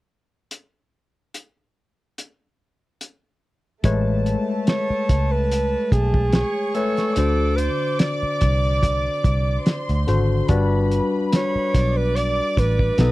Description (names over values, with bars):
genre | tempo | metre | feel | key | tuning
lush 1970s-style soul | 72 BPM | 4/4 | swing 54% on 16ths | A major | A4 = 435 Hz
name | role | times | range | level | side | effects
cloth-damped thuddy drum kit | drums | 0.5-13.1 s | hi-hat, kick drum, snare drum | -20 LUFS | equal | none
barky tine electric piano | accompaniment | 3.8-13.1 s | B2 to G#5 | -25 LUFS | left 4 dB | overdrive
vintage muted picked electric bass | bass | 3.8-13.1 s | G1 to D2 | -21 LUFS | equal | none
dark studio string section | second line | 3.9-13.1 s | A3 to D#6 | -31 LUFS | equal | none
breathy alto saxophone | melody | 4.7-13.1 s | G#4 to D5 | -24 LUFS | right 2 dB | none
room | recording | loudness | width
little or no reverb | dry, close 1970s-style studio recording | -18 LUFS | side -18 dB against mid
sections
0.5-3.8 A section; 3.8-13.1 B section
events
none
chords
0.5 N.C.; 3.8 Amaj9; 7.2 D7; 10.5 Gmaj7